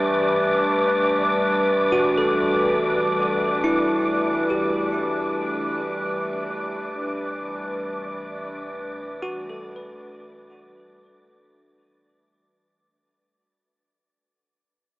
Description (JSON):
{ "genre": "ambient", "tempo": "70 BPM", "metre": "4/4", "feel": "straight", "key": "unclear", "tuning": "A4 = 439 Hz", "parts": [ { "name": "warbly tape-like pad", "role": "sustained chords", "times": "0.0-12.7 s", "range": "E3 to B4", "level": "-24 LUFS", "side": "equal", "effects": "chorus, built-in reverb, shimmer reverb" }, { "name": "bell-like tine electric piano", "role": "arpeggios", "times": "0.0-12.7 s", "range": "E4 to B4", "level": "-26 LUFS", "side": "equal", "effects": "diffuse ambient delay, shimmer reverb" }, { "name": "warm sub bass", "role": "bass", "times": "0.0-12.6 s", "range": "C2", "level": "-47 LUFS", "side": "equal", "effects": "none" }, { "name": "wind-like tuned noise texture", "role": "texture", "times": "0.0-12.7 s", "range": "D5 to D6", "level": "-27 LUFS", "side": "equal", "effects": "built-in reverb, shimmer reverb" } ], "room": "wet huge ambient reverb, RT60 8.7 s", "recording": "small speaker sound", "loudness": "-20 LUFS", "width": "side -20 dB against mid", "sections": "0.0-12.6 A section", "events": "fade-out 3.5-12.6", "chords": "0.0 Gmaj7/C", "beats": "0.65 1.51 | 2.36 3.22 4.08 4.93 | 5.79 6.65 7.51 8.36 | 9.22 10.08 10.94 11.79" }